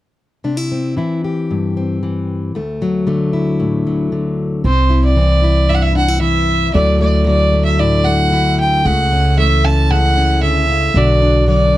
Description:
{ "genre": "folk", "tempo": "114 BPM", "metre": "4/4", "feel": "straight", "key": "unclear", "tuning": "A4 = 440 Hz", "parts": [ { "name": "fingerpicked plugged-in steel-string acoustic guitar", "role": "accompaniment", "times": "0.4-11.8 s", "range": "D2 to G4", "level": "-17 LUFS", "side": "left 2 dB", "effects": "none" }, { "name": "upright bass", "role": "bass", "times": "4.6-11.8 s", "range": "B1 to D2", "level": "-14 LUFS", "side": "right 1 dB", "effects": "none" }, { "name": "warm fiddle", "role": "melody", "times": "4.7-11.8 s", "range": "C5 to A5", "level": "-16 LUFS", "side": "right 1 dB", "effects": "none" } ], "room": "little or no reverb", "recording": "dry, close 1970s-style studio recording", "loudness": "-12 LUFS", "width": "side -15 dB against mid", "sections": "0.4-4.6 A section; 4.6-11.8 B section", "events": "none", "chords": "0.4 C; 2.5 Dadd9; 4.6 C; 6.7 Dadd9; 8.8 A/C#; 10.9 Bm", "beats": "| 0.45 0.97 1.50 2.02 | 2.55 3.07 3.60 4.12 | 4.65 5.17 5.70 6.22 | 6.75 7.27 7.80 8.32 | 8.85 9.37 9.90 10.43 | 10.95 11.47" }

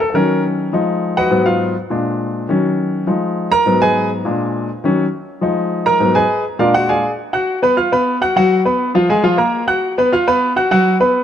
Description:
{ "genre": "latin", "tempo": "205 BPM", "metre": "4/4", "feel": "straight", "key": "Eb minor", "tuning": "A4 = 444 Hz", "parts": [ { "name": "clear baby grand piano", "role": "solo", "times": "0.0-11.2 s", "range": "Ab2 to F#6", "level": "-14 LUFS", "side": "equal", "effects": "none" } ], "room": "light reverb", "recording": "dark, warm production", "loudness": "-14 LUFS", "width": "side -9 dB against mid", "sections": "0.0-7.2 A section; 7.2-11.2 B section", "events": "grand piano solo 0.0-7.2", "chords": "0.2 Ebm7; 0.7 Fm7b5; 1.3 Abm7; 1.9 Bb7; 2.5 Ebm7; 3.1 Fm7; 3.7 Abm7; 4.3 Bb7; 4.8 Ebm7; 5.4 Fm7; 6.0 Abm7; 6.6 Bb7; 7.2 B5; 8.4 Gbsus4; 8.9 Bb5; 9.5 Gbadd11/Bb; 10.1 B5; 10.7 Gbsus4", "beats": "| 0.15 0.45 0.74 1.03 | 1.32 1.62 1.91 2.20 | 2.50 2.79 3.08 3.38 | 3.67 3.96 4.26 4.55 | 4.84 5.14 5.43 5.72 | 6.02 6.31 6.60 6.89 | 7.19 7.48 7.78 8.07 | 8.36 8.65 8.95 9.24 | 9.53 9.83 10.12 10.41 | 10.71 11.00" }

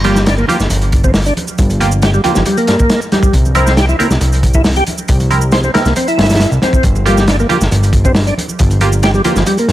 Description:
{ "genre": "breakbeat, breaks", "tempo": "137 BPM", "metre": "4/4", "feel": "straight", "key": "G dorian", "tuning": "A4 = 439 Hz", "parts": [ { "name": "tonewheel organ", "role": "riff", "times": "0.0-9.7 s", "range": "F3 to C5", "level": "-16 LUFS", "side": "equal", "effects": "chorus vibrato, slow rotary speaker, dub echo" }, { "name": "band-passed chord stab", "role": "stabs", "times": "0.0-9.4 s", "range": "Bb3 to Bb4", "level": "-19 LUFS", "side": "right 2 dB", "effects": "phaser, cassette tape, dub echo" }, { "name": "fat analog bass", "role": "bass", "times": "0.0-9.7 s", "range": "G1 to G2", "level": "-13 LUFS", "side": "equal", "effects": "none" }, { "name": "crunchy breakbeat drum kit", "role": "drums", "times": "0.0-9.7 s", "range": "hi-hat, kick drum, snare drum", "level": "-14 LUFS", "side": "equal", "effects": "none" }, { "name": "congas", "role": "percussion", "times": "0.1-9.7 s", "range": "none", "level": "-24 LUFS", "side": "right 2 dB", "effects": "none" }, { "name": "shaker", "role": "drums", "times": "0.2-9.7 s", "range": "none", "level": "-28 LUFS", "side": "right 4 dB", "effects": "none" } ], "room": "small room reverb", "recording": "vinyl crackle", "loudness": "-10 LUFS", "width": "side -14 dB against mid", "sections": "0.0-9.7 A section", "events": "none", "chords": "0.0 Gm7; 3.3 C7; 6.8 Gm7", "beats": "0.27 0.71 1.15 | 1.58 2.02 2.46 2.90 | 3.33 3.77 4.21 4.65 | 5.09 5.53 5.96 6.40 | 6.84 7.28 7.71 8.15 | 8.59 9.03 9.47" }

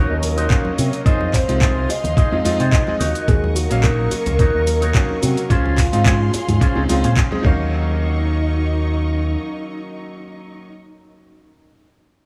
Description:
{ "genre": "nu-disco, nu disco", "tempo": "108 BPM", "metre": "4/4", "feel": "straight", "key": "Eb dorian", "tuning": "A4 = 441 Hz", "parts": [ { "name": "soft octave-layered synth lead", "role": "melody", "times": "0.0-10.7 s", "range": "Eb4 to Eb5", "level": "-27 LUFS", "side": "equal", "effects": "chorus, dub echo" }, { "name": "bright electric grand piano", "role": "accompaniment", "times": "0.0-10.7 s", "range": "Gb3 to F5", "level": "-29 LUFS", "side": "equal", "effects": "vintage 12-bit sampler grit, analog delay" }, { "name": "dark studio string section", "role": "sustained chords", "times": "0.0-10.7 s", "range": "Db4 to Db6", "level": "-33 LUFS", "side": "equal", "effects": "sidechain pumping" }, { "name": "electric guitar with an envelope filter", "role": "riff", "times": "0.0-11.4 s", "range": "Db4 to Db5", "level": "-30 LUFS", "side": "equal", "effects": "subtle chorus, analog delay" }, { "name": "fingered electric bass with an envelope filter", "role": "bass", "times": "0.0-9.4 s", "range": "Bb1 to C3", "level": "-22 LUFS", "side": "equal", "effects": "tube saturation" }, { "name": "house drum kit", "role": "drums", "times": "0.2-7.3 s", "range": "handclaps, hi-hat, shaker", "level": "-29 LUFS", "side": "equal", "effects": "analog delay" }, { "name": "congas and bongos", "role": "percussion", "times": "0.2-7.6 s", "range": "none", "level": "-33 LUFS", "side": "equal", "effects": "none" }, { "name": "electronic kick drum", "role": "drums", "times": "0.5-7.6 s", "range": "none", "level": "-19 LUFS", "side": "equal", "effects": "none" } ], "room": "digital ambience", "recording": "echo-heavy mix, small room ambience", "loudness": "-18 LUFS", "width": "mono", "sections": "0.0-7.7 A section; 7.7-9.9 B section", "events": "drop 0.0-7.7", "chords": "0.0 Ebm7; 1.1 Fm7; 3.0 Ebm7; 5.5 Dbmaj7; 7.4 Ebm7", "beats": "0.50 | 1.06 1.61 2.17 2.73 | 3.28 3.84 4.39 4.95 | 5.50 6.06 6.61 7.17 | 7.72 8.28 8.84 9.39" }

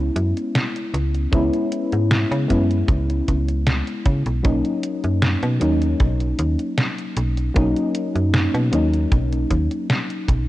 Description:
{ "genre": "vaporwave", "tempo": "77 BPM", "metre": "4/4", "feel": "straight", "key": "B major", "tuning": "A4 = 441 Hz", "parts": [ { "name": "mellow FM electric piano", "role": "accompaniment", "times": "0.0-10.5 s", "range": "F#3 to E4", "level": "-22 LUFS", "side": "left 1 dB", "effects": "analog chorus, cassette tape, analog delay" }, { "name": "slap-like FM bass", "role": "bass", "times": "0.0-10.5 s", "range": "B1 to C#3", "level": "-21 LUFS", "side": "equal", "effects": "none" }, { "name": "detuned 8-bit digital drum machine", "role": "drums", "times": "0.2-10.5 s", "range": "hi-hat, snare drum", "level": "-24 LUFS", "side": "equal", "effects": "overdrive" }, { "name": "kick drum", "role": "drums", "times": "1.3-10.5 s", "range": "none", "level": "-20 LUFS", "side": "equal", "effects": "none" } ], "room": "light reverb, studio ambience", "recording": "cassette tape", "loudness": "-18 LUFS", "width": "side -16 dB against mid", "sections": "0.0-10.5 A section", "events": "none", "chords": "0.0 F#7sus4/C# (rootless); 4.4 Bmaj9", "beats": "0.55 | 1.33 2.11 2.89 3.67 | 4.45 5.23 6.00 6.78 | 7.56 8.34 9.12 9.90" }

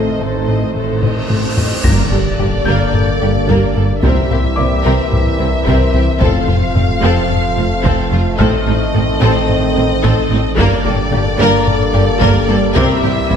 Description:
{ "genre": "cinematic, hybrid orchestral and electronic film score", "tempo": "110 BPM", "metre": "4/4", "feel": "straight", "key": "G minor", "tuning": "A4 = 439 Hz", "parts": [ { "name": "warm studio violin section", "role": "melody", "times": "0.0-13.4 s", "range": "C5 to F5", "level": "-22 LUFS", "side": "left 2 dB", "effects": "none" }, { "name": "warm symphonic violin section", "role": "second line", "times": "0.0-13.4 s", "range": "C4 to C5", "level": "-23 LUFS", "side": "left 4 dB", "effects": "none" }, { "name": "warm symphonic viola section", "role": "accompaniment", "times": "0.0-13.4 s", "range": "A3 to C4", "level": "-24 LUFS", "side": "right 2 dB", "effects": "none" }, { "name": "clear trombone section", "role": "sustained chords", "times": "0.0-13.4 s", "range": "D3 to A3", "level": "-24 LUFS", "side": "right 5 dB", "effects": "none" }, { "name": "hollow soft pad", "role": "sustained chords", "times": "0.0-13.4 s", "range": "A3 to D5", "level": "-25 LUFS", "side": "left 1 dB", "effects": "chorus" }, { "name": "mellow French horn section", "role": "sustained chords", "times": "0.0-13.4 s", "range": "Bb3 to Bb4", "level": "-23 LUFS", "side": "left 4 dB", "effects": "none" }, { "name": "resonant blip pluck", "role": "arpeggios", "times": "0.0-13.4 s", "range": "C3 to A4", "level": "-25 LUFS", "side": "right 2 dB", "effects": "none" }, { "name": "round analog bass", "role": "riff", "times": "0.0-13.4 s", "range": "C2 to A2", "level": "-20 LUFS", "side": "left 2 dB", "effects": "none" }, { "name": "rich symphonic double bass section", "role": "bass", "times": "0.0-13.4 s", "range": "F1 to C2", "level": "-21 LUFS", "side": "right 3 dB", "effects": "none" }, { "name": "warm symphonic cello section", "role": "bass", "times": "0.0-13.4 s", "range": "F2 to C3", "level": "-22 LUFS", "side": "right 3 dB", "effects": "none" }, { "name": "cymbal swell and impact", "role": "sound effects", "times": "1.0-4.0 s", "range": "none", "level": "-22 LUFS", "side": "equal", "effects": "none" }, { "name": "warm concert grand piano", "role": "texture", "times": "0.0-13.4 s", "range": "D5 to Bb6", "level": "-28 LUFS", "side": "left 2 dB", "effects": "digital delay" }, { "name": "taiko ensemble", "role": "drums", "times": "1.0-13.4 s", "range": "none", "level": "-20 LUFS", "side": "left 1 dB", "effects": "none" }, { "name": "punchy sub bass", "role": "bass", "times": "1.8-13.4 s", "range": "F1 to C2", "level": "-22 LUFS", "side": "equal", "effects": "none" } ], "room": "moderate scoring stage reverb, RT60 2.1 s", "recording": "none", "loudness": "-11 LUFS", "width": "side -7 dB against mid", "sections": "0.0-1.9 A section; 1.9-13.4 A section", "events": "cymbal swell 1.0-1.9; drum fill 1.0-1.9; impact 1.9-4.0", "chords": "0.0 Adim; 1.9 Gmadd9; 4.0 C7; 6.2 F; 8.4 Adim; 10.6 Gmadd9; 12.8 C7", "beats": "0.21 0.76 1.31 | 1.85 2.40 2.94 3.49 | 4.03 4.58 5.12 5.67 | 6.21 6.76 7.31 7.85 | 8.40 8.94 9.49 10.03 | 10.58 11.12 11.67 12.21 | 12.76 13.31" }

